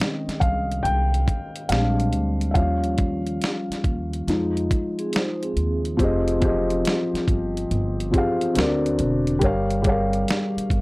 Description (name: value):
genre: lo-fi hip hop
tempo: 70 BPM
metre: 4/4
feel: swing 66% on 16ths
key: F minor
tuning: A4 = 440 Hz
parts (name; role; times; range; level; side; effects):
- felt-muted upright piano; accompaniment; 0.0-10.8 s; D3 to G5; -23 LUFS; left 1 dB; cassette tape, low-pass filter
- dusty soul sampler-style drum kit; drums; 0.0-10.8 s; hi-hat, kick drum, snare drum; -24 LUFS; equal; none
- upright bass; bass; 0.3-10.8 s; E1 to F2; -25 LUFS; equal; transformer saturation
- vibraphone with soft mallets; second line; 5.0-6.0 s; C4 to C5; -31 LUFS; right 2 dB; low-pass filter, analog delay
room: little or no reverb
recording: dry, gritty hardware recording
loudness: -20 LUFS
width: side -23 dB against mid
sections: 0.0-6.0 A section; 6.0-10.8 A section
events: felt piano solo 0.0-6.0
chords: 0.0 Bbm11 (rootless); 1.7 Bb13; 2.6 Eb9; 4.3 Fm7; 6.0 Fm9; 8.6 D7b13; 9.4 Gm7b5